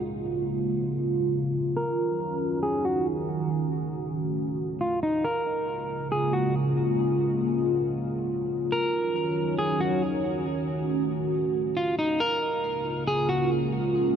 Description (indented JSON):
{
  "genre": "hip hop",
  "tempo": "138 BPM",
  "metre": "4/4",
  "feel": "half-time",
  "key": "Db major",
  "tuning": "A4 = 440 Hz",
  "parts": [
    { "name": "dark analog pad", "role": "sustained chords", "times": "0.0-14.2 s", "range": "Db3 to Gb4", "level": "-26 LUFS", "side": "right 1 dB", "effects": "chorus, phaser, low-pass filter" },
    { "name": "electric guitar at the edge of break-up", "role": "melody", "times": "1.8-13.5 s", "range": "Eb4 to Bb4", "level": "-29 LUFS", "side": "equal", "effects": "low-pass filter, tape echo" }
  ],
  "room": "moderate huge ambient reverb, RT60 8.7 s",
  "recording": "none",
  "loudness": "-24 LUFS",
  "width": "side -8 dB against mid",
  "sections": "0.0-12.2 A section; 12.2-14.2 B section",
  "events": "filter sweep 0.0-12.2",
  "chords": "0.0 Db6; 1.8 Ebm9; 3.5 Gbm6; 5.2 Db6; 8.7 Ebm9; 10.5 Gbm6; 12.2 Db6"
}